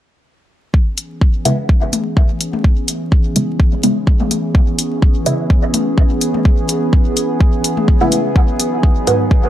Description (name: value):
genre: dub techno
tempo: 126 BPM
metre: 4/4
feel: swing 54% on 16ths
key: C# minor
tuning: A4 = 442 Hz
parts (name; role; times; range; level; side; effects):
- warbly tape-like pad; sustained chords; 1.1-9.5 s; E3 to G#4; -20 LUFS; right 1 dB; chorus, built-in reverb, sidechain pumping
- electronic kick drum; drums; 0.7-9.4 s; none; -12 LUFS; equal; none
- electronic hi-hat; drums; 1.0-9.2 s; none; -19 LUFS; left 2 dB; overdrive
- filtered dub chord stab; stabs; 1.5-9.5 s; G#2 to E4; -18 LUFS; equal; phaser, sidechain pumping, dub echo
- electronic toms; percussion; 1.9-8.2 s; none; -23 LUFS; left 6 dB; sidechain pumping on toms, dub echo
room: little or no reverb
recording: vinyl crackle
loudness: -12 LUFS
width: side -12 dB against mid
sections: 0.7-9.5 A section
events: none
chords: 0.7 C#m7; 8.4 G#m7